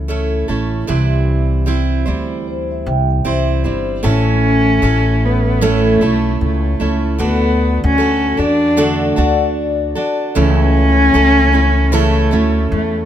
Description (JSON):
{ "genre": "acoustic pop", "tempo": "76 BPM", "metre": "4/4", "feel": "swing 60% on 16ths", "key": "A major", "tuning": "A4 = 441 Hz", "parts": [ { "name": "picked steel-string acoustic guitar", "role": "accompaniment", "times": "0.0-13.1 s", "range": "A2 to C5", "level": "-18 LUFS", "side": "right 3 dB", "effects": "none" }, { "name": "upright bass", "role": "bass", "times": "0.0-13.1 s", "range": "G1 to E2", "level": "-16 LUFS", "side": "left 1 dB", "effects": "none" }, { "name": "vibraphone with soft mallets", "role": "second line", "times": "2.5-4.0, 9.0-10.3 s", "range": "C5 to G5", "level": "-21 LUFS", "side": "left 5 dB", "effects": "none" }, { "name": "dark cello", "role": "melody", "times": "4.1-13.1 s", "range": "A3 to D4", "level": "-16 LUFS", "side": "left 1 dB", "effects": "none" } ], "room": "light reverb", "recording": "close, detailed microphones", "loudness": "-12 LUFS", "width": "side -10 dB against mid", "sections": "0.0-4.0 A section; 4.0-13.1 B section", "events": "none", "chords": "0.0 A; 0.9 C; 4.0 A; 7.2 D; 10.4 A/C#" }